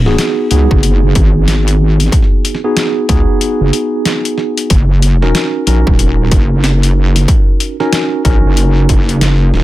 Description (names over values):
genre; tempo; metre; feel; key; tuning
glitch hop; 93 BPM; 4/4; swing 61% on 16ths; G# minor; A4 = 439 Hz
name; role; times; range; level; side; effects
wobble bass; bass; 0.0-9.6 s; D#1 to C#2; -11 LUFS; equal; chorus
tine electric piano; stabs; 0.1-9.6 s; B3 to A#4; -16 LUFS; right 1 dB; medium stereo tremolo, sidechain pumping, ping-pong delay
boom bap sampler-style drum kit; drums; 0.1-9.6 s; hi-hat, snare drum; -17 LUFS; left 1 dB; none
electronic kick drum; drums; 0.7-9.1 s; none; -12 LUFS; equal; distortion
room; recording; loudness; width
little or no reverb; none; -9 LUFS; side -16 dB against mid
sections
0.0-9.6 A section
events
none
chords
0.0 G#m7; 4.7 F#6